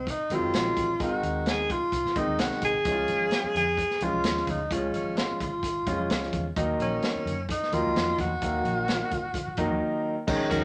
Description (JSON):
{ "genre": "uptempo 1960s-style soul", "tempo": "129 BPM", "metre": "4/4", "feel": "straight", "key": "unclear", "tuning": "A4 = 437 Hz", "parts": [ { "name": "breathy tenor saxophone", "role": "melody", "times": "0.0-9.8 s", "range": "C4 to Ab4", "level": "-30 LUFS", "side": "equal", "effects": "none" }, { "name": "vintage muted fingered electric bass", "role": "bass", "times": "0.0-10.6 s", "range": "F1 to Gb2", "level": "-38 LUFS", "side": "equal", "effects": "none" }, { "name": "vintage drum kit", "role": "drums", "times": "0.1-10.6 s", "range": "crash cymbal, hi-hat, kick drum, snare drum", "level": "-34 LUFS", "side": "equal", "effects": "none" }, { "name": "warm grand piano", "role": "accompaniment", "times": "0.3-10.6 s", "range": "Eb3 to F5", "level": "-32 LUFS", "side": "equal", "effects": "none" }, { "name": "congas", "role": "percussion", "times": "2.9-10.6 s", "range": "none", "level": "-42 LUFS", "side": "equal", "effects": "none" }, { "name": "tambourine", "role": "percussion", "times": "10.3-10.6 s", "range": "none", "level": "-47 LUFS", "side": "equal", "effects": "none" }, { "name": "warm horn section", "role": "second line", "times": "10.5-10.6 s", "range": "Eb4 to Bb4", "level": "-29 LUFS", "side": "equal", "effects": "none" } ], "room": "wet studio reverb, RT60 0.6 s", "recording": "none", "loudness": "-27 LUFS", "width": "mono", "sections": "0.0-10.3 A section", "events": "none", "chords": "0.0 Ab; 2.9 Db; 6.6 Ebm" }